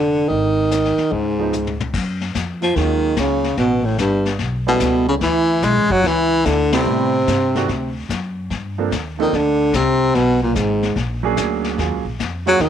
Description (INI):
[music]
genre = jazz, small-group swing and bop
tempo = 146 BPM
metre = 4/4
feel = swing 66% on 8ths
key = unclear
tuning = A4 = 442 Hz
[part]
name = breathy baritone saxophone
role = melody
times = 0.0-12.7 s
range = G2 to Ab3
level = -17 LUFS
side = left 2 dB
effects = none
[part]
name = breathy trombone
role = second line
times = 0.0-12.7 s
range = G3 to Ab4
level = -23 LUFS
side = right 11 dB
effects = none
[part]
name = upright bass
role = bass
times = 0.0-12.7 s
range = F1 to A2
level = -24 LUFS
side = equal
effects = none
[part]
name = vintage brush drum kit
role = drums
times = 0.3-12.7 s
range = brushed snare drum, crash cymbal, hi-hat, kick drum, ride cymbal, snare drum, toms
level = -27 LUFS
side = left 6 dB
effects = none
[part]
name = warm grand piano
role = accompaniment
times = 1.4-12.6 s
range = Eb3 to A4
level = -23 LUFS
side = right 10 dB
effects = none
[sound]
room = light reverb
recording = 1960s-style stereo with parts hard left and right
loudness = -16 LUFS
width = side -9 dB against mid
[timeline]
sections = 0.0-1.9 A section; 1.9-12.7 B section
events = drum fill 1.5-1.9; band accent 6.7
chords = 0.3 Ab5; 1.1 Db9; 1.9 Gbmaj9; 3.6 A7; 5.2 Dmaj7sus2; 6.9 Am7; 7.7 D; 8.5 Gm11; 10.1 Abmadd9; 11.0 Bb7alt; 11.8 Ebm11